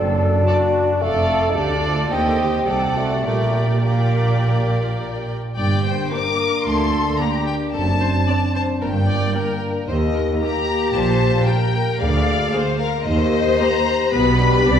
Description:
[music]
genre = quick classical-period movement for symphony orchestra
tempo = 112 BPM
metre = 4/4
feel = rubato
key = G minor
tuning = A4 = 441 Hz
[part]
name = muted chamber viola section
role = accompaniment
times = 0.0-14.8 s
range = Bb3 to A4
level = -26 LUFS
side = right 1 dB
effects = none
[part]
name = warm bassoon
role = accompaniment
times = 0.0-5.3 s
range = A3 to Eb4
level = -22 LUFS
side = left 1 dB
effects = none
[part]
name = muted chamber double bass section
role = bass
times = 0.0-14.8 s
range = F1 to Eb2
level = -23 LUFS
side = right 2 dB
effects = none
[part]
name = muted studio cello section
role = bass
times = 0.0-14.8 s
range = D2 to C3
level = -23 LUFS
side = right 2 dB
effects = none
[part]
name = muted chamber violin section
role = melody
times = 0.5-14.8 s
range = Eb5 to D6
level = -25 LUFS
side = left 4 dB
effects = none
[part]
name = muted chamber violin section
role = second line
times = 0.5-14.8 s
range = G4 to Eb5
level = -24 LUFS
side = left 2 dB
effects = none
[part]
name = dark French horn section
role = sustained chords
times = 5.6-14.8 s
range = Bb3 to Ab4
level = -24 LUFS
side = left 2 dB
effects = none
[sound]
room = wet recital hall reverb, RT60 1.6 s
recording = heard from further back in the room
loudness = -17 LUFS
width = side -8 dB against mid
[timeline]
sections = 0.0-5.6 A section; 5.6-14.8 A section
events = none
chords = 0.0 D/F#; 1.0 Dm/F; 2.1 Cm/Eb; 2.7 D7/C; 3.3 Gm/Bb; 5.6 Gm; 7.7 D7/F#; 8.8 Gm; 9.9 Eb; 12.0 Bb7/D; 13.1 Eb; 14.1 G/B

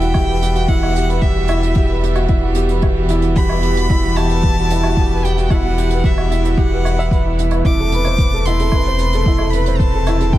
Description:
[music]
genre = piano and strings electronica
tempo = 112 BPM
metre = 4/4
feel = straight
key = E minor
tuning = A4 = 440 Hz
[part]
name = rich violin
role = melody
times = 0.0-10.4 s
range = E5 to D6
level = -24 LUFS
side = left 1 dB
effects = ping-pong delay, shimmer reverb
[part]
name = clear studio string section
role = sustained chords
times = 0.0-10.4 s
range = C3 to E5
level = -24 LUFS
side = right 1 dB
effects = sidechain pumping, shimmer reverb
[part]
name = warm upright piano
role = riff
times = 0.0-10.4 s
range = E4 to E5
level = -20 LUFS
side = right 2 dB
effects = ping-pong delay, shimmer reverb
[part]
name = round analog bass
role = bass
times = 0.0-10.4 s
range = E1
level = -18 LUFS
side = equal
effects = sidechain pumping
[part]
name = hi-hat and woodblock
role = drums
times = 0.0-10.4 s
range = none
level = -29 LUFS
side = right 2 dB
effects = none
[part]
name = electronic kick drum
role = drums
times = 0.1-10.4 s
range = none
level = -16 LUFS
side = equal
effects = none
[sound]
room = studio ambience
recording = dark, warm production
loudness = -13 LUFS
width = side -14 dB against mid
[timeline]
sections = 0.0-10.4 A section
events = none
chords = 0.0 Emadd9; 7.7 Amadd9/E

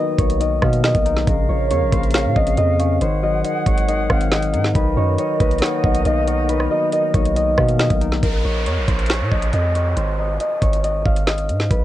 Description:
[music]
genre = hip hop, drill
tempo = 138 BPM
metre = 4/4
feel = half-time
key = Bb minor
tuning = A4 = 437 Hz
[part]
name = concert harp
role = melody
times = 0.0-11.8 s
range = Bb4 to F5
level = -22 LUFS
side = equal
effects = cassette tape, tape echo
[part]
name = hollow clarinet-like synth lead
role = second line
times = 0.0-8.2 s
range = Db5 to Gb5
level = -26 LUFS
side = right 11 dB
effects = chorus, cassette tape, tape echo
[part]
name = barky tine electric piano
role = accompaniment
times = 0.0-8.3 s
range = Db3 to D#4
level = -24 LUFS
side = left 8 dB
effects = fast stereo tremolo, cassette tape
[part]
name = long sustained 808-style bass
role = bass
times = 0.2-11.8 s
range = Ab1 to B2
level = -20 LUFS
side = equal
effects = none
[part]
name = drill drum kit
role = drums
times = 0.2-11.8 s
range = hi-hat, kick drum, rim click, snare drum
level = -20 LUFS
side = right 1 dB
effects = none
[part]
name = bright small flute group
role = sustained chords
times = 1.3-8.2 s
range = D#4 to Gb5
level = -30 LUFS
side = left 1 dB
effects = cassette tape
[part]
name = downlifter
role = sound effects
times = 8.2-11.7 s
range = none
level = -29 LUFS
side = right 1 dB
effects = none
[sound]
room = little or no reverb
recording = home recording on cassette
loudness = -16 LUFS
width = side -13 dB against mid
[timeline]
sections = 0.0-8.2 A section; 8.2-11.8 B section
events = none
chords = 0.0 Bmaj7; 1.3 Bbmadd9; 3.0 Ab7; 4.8 Bmaj7; 8.2 Bb5; 10.0 Abadd11

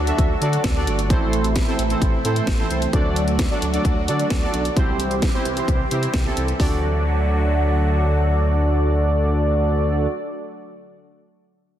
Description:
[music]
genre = synth-pop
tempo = 131 BPM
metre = 4/4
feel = straight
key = D mixolydian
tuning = A4 = 440 Hz
[part]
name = phased analog pad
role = sustained chords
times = 0.0-10.1 s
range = C3 to G4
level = -28 LUFS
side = right 2 dB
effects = phaser, chorus
[part]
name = smooth synth bass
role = bass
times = 0.0-10.1 s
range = G1 to D3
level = -21 LUFS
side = equal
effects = none
[part]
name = analog synth brass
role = accompaniment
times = 0.1-10.1 s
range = C4 to E5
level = -23 LUFS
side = right 1 dB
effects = chorus
[part]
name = house drum kit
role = drums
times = 0.1-6.7 s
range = hi-hat, kick drum, snare drum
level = -22 LUFS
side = equal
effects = none
[sound]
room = moderate lush hall reverb, RT60 1.9 s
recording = dense, heavily limited modern master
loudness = -18 LUFS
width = side -11 dB against mid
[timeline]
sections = 0.0-6.6 A section; 6.6-10.3 B section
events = none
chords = 0.0 D; 1.1 Am; 2.9 D; 4.8 C; 6.6 D

